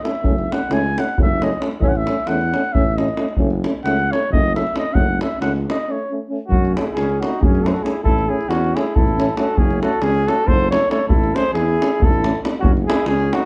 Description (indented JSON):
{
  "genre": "balkan folk, Balkan brass band",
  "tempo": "272 BPM (eighths)",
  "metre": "7/8",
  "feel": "straight",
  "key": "F# minor",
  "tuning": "A4 = 441 Hz",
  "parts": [
    { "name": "dark trumpet", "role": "second line", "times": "0.0-13.5 s", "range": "C#4 to G#5", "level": "-27 LUFS", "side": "equal", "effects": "none" },
    { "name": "warm euphonium", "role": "accompaniment", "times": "0.0-13.4 s", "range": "A3", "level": "-31 LUFS", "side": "equal", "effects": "none" },
    { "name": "warm euphonium", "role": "accompaniment", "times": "0.1-13.4 s", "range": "C#4", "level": "-27 LUFS", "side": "equal", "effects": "none" },
    { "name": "davul", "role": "percussion", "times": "0.1-13.5 s", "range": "none", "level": "-23 LUFS", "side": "equal", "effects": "none" },
    { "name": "mellow tuba", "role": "bass", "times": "0.2-13.3 s", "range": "F#1 to F#2", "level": "-24 LUFS", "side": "equal", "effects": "none" },
    { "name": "dark cornet", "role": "melody", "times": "6.5-13.5 s", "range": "F#4 to C#5", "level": "-23 LUFS", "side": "equal", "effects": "none" }
  ],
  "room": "moderate studio reverb, RT60 0.6 s",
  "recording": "dark, warm production, nothing above 10.9 kHz",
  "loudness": "-18 LUFS",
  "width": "mono",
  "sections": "0.0-6.5 A section; 6.5-13.5 B section",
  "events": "speeding up 0.0-13.5; trumpet solo 0.0-6.5; break 5.8-6.5",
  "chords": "0.2 F#m; 1.8 A; 3.4 F#m; 8.0 A; 9.6 F#m; 11.1 A; 12.6 F#m",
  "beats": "0.00 | 0.22 0.45 0.67 0.90 1.13 1.35 1.58 | 1.80 2.03 2.25 2.48 2.70 2.93 3.15 | 3.38 3.60 3.83 4.05 4.27 4.50 4.72 | 4.94 5.17 5.39 5.61 5.83 6.05 6.28 | 6.50 6.72 6.94 7.16 7.38 7.60 7.82 | 8.04 8.26 8.48 8.70 8.91 9.13 9.35 | 9.57 9.79 10.00 10.22 10.44 10.66 10.87 | 11.09 11.31 11.52 11.74 11.96 12.17 12.39 | 12.60 12.82 13.04 13.25"
}